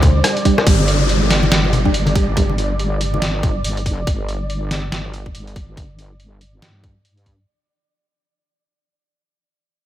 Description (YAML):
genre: deep dubstep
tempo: 141 BPM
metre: 4/4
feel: swing 59% on 16ths, half-time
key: unclear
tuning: A4 = 445 Hz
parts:
  - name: deep dark ambient pad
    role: sustained chords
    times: 0.0-0.7 s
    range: G3 to C5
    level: -29 LUFS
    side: equal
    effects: none
  - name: wobble bass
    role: bass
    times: 0.0-7.5 s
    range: G1 to G2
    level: -20 LUFS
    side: equal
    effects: chorus
  - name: electronic kick drum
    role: drums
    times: 0.0-7.4 s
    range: none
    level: -18 LUFS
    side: equal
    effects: studio reverb
  - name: trip hop sampler-style drum kit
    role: drums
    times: 0.0-7.4 s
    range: hi-hat, rim click, snare drum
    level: -21 LUFS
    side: equal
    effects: studio reverb
  - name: bongos and congas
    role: percussion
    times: 0.0-3.5 s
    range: none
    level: -22 LUFS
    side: left 3 dB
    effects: dub echo
  - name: flickering grainy texture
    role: texture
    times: 0.0-7.5 s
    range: D5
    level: -27 LUFS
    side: right 2 dB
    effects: built-in reverb
  - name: filtered dub chord stab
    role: stabs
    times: 0.5-2.4 s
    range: G3 to G4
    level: -24 LUFS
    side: right 4 dB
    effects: phaser, dub echo
  - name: downlifter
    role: sound effects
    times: 0.7-4.1 s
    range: none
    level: -24 LUFS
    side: equal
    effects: none
room: digital ambience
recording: none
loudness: -15 LUFS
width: side -12 dB against mid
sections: 0.7-7.5 A section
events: fade-out 0.7-7.5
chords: 0.0 G5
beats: 0.24 | 0.67 1.09 1.52 1.94 | 2.37 2.79 3.22 3.64 | 4.07 4.50 4.92 5.35 | 5.77 6.20 6.62 7.05